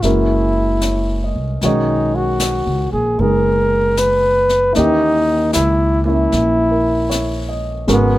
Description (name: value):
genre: jazz ballad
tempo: 76 BPM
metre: 4/4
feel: swing 66% on 8ths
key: unclear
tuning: A4 = 441 Hz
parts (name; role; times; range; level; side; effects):
- breathy flugelhorn; melody; 0.0-8.2 s; B3 to B4; -16 LUFS; equal; none
- warm grand piano; accompaniment; 0.0-8.2 s; C#3 to D#5; -20 LUFS; right 1 dB; none
- upright bass; bass; 0.0-8.2 s; F#1 to D#2; -19 LUFS; equal; none
- jazz brush drum kit; drums; 0.0-8.2 s; brushed snare drum, hi-hat, snare drum; -26 LUFS; left 3 dB; none
room: light reverb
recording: none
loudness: -14 LUFS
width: side -16 dB against mid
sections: 0.0-1.6 A section; 1.6-8.2 B section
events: none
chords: 0.0 F#7; 1.6 Bmaj9; 4.8 D#7b9